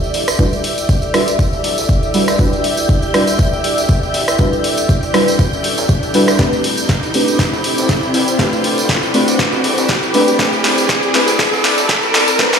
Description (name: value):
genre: deep house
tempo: 120 BPM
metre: 4/4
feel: swing 56% on 16ths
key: E minor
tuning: A4 = 440 Hz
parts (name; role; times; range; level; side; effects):
- dark analog pad; sustained chords; 0.0-12.6 s; C4 to E6; -21 LUFS; left 1 dB; chorus, vintage 12-bit sampler grit, sidechain pumping
- deep mellow chord stab; stabs; 0.0-12.6 s; G3 to B4; -18 LUFS; equal; chorus, sidechain pumping, digital delay
- smooth synth bass; bass; 0.0-12.5 s; D1 to E2; -28 LUFS; equal; none
- tambourine; percussion; 0.0-12.6 s; none; -25 LUFS; right 4 dB; none
- riser; sound effects; 0.1-12.6 s; none; -22 LUFS; equal; none
- string machine, violins; texture; 0.0-12.6 s; G4 to G6; -27 LUFS; right 1 dB; ensemble chorus, sidechain pumping
- warbly tape-like pad; texture; 0.0-12.6 s; E4 to D5; -25 LUFS; left 1 dB; chorus, built-in reverb, sidechain pumping
- punchy analog drum machine; drums; 0.1-12.6 s; hi-hat, rim click, snare drum; -18 LUFS; equal; high-pass filter on snare, high-pass filter on hats, high-pass filter on room
- electronic kick drum; drums; 0.4-12.5 s; none; -16 LUFS; equal; none
room: moderate digital room reverb, RT60 1.0 s, digital ambience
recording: played on a big sound system in a bare room, stone room reverb, high-pass filter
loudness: -12 LUFS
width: side -7 dB against mid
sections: 0.0-12.6 A section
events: build-up 0.0-12.6; filter sweep on synth stab 0.0-12.6; filter sweep 0.0-12.6; riser 0.1-12.6; drum fill 6.4-12.6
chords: 0.0 Em9; 6.4 Am11